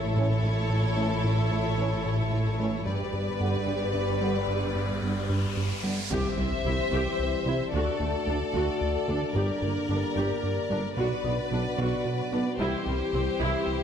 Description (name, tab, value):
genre	cinematic, hybrid orchestral and electronic film score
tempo	74 BPM (dotted quarters)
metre	6/8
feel	straight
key	unclear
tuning	A4 = 441 Hz
part	rich studio violin section	melody	0.0-13.8 s	C5 to E5	-35 LUFS	left 4 dB	none
part	clear symphonic violin section	second line	0.0-13.8 s	G4 to C5	-34 LUFS	left 3 dB	none
part	warm symphonic viola section	accompaniment	0.0-13.7 s	G3 to G4	-34 LUFS	right 1 dB	none
part	rubbery square bass	riff	0.0-13.8 s	C2 to B3	-31 LUFS	equal	none
part	rich studio cello section	bass	0.0-13.5 s	C2 to C3	-35 LUFS	right 2 dB	none
part	rich studio double bass section	bass	0.0-13.5 s	G1 to D2	-33 LUFS	right 1 dB	none
part	dark trombone section	sustained chords	0.2-13.8 s	D3 to C#4	-37 LUFS	right 2 dB	none
part	riser and impact	sound effects	3.9-7.7 s	none	-38 LUFS	left 1 dB	none
part	warm French horn section	sustained chords	6.1-13.8 s	C4 to G4	-35 LUFS	left 4 dB	none
part	mellow tuba	bass	6.1-13.5 s	G1 to D2	-36 LUFS	right 3 dB	none
room	moderate scoring stage reverb, RT60 2.2 s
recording	none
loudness	-25 LUFS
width	side -8 dB against mid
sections	0.0-6.1 A section; 6.1-13.8 B section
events	riser 3.9-6.1; impact 6.1-7.7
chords	0.0 A; 2.9 G; 6.1 C; 7.7 D; 9.4 Gm; 11.0 Bm; 12.6 C